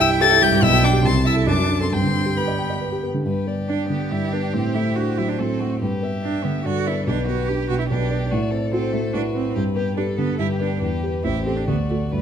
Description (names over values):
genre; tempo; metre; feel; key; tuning
quick classical-period movement for piano quartet; 142 BPM; 3/4; rubato; G major; A4 = 439 Hz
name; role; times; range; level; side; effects
dark violin; melody; 0.0-12.2 s; B4 to A6; -25 LUFS; left 8 dB; none
clear cello; second line; 0.0-12.2 s; A3 to A4; -27 LUFS; right 9 dB; none
rich violin; second line; 0.0-12.2 s; F#4 to A5; -30 LUFS; right 1 dB; none
dark concert grand piano; accompaniment; 0.0-12.2 s; A1 to G5; -21 LUFS; equal; none
room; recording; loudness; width
moderate recital hall reverb, RT60 1.7 s; close, detailed microphones; -18 LUFS; side -8 dB against mid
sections
0.0-3.3 A section; 3.3-12.2 A section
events
none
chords
0.0 C; 0.6 G/B; 1.0 Am/C; 1.5 D/F#; 1.9 G; 4.5 D7/A; 5.8 G; 7.1 G/B; 8.3 F#dim/A; 9.6 G; 10.8 Em; 11.2 Am7; 11.7 D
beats
0.21 | 0.63 1.05 1.48 | 1.93 2.37 2.81 | 3.26 3.69 4.12 | 4.54 4.97 5.39 | 5.81 6.23 6.65 | 7.07 7.48 7.89 | 8.31 8.72 9.14 | 9.55 9.97 10.39 | 10.81 11.24 11.67 | 12.12